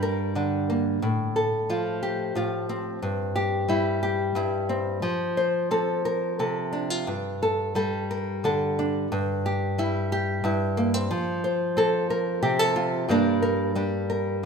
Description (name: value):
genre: folk, solo fingerstyle acoustic guitar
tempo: 60 BPM (dotted quarters)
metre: 6/8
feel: rubato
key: unclear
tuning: A4 = 440 Hz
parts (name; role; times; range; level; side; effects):
- nylon-string guitar; solo; 0.0-14.5 s; G2 to C5; -23 LUFS; equal; none
room: moderate concert hall reverb, RT60 2.3 s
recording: minimal, uncompressed stereo recording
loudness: -23 LUFS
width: side -5 dB against mid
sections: 0.0-14.5 A section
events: none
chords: 0.0 Gm; 1.0 F/A; 3.0 C/G; 5.0 F; 7.1 Gsus2; 9.1 C/G (rootless); 11.1 F; 13.1 Gm